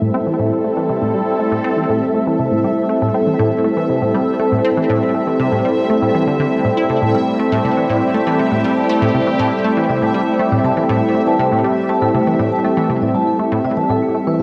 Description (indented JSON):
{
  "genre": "ambient, sequencer-driven space music",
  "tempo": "120 BPM",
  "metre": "4/4",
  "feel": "straight",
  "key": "A minor",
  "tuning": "A4 = 438 Hz",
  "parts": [
    { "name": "sweeping resonant pad", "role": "sustained chords", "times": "0.0-14.4 s", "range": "G3 to A4", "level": "-18 LUFS", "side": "equal", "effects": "subtle chorus, cassette tape" },
    { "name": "tight sequenced synth", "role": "riff", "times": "0.0-14.4 s", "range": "A2 to E4", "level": "-22 LUFS", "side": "equal", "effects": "chorus, cassette tape, delay" },
    { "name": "bubbling stepped-filter texture", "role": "texture", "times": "0.0-14.4 s", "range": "E5", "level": "-30 LUFS", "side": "equal", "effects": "chorus, built-in reverb, cassette tape" },
    { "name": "vibraphone with soft mallets", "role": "arpeggios", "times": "6.9-14.4 s", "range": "A3 to A5", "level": "-25 LUFS", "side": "equal", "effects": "cassette tape, delay" }
  ],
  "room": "wet lush hall reverb, RT60 2.4 s",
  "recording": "home recording on cassette",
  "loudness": "-16 LUFS",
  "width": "mono",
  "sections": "0.0-14.4 A section",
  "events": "none",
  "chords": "0.0 Am7"
}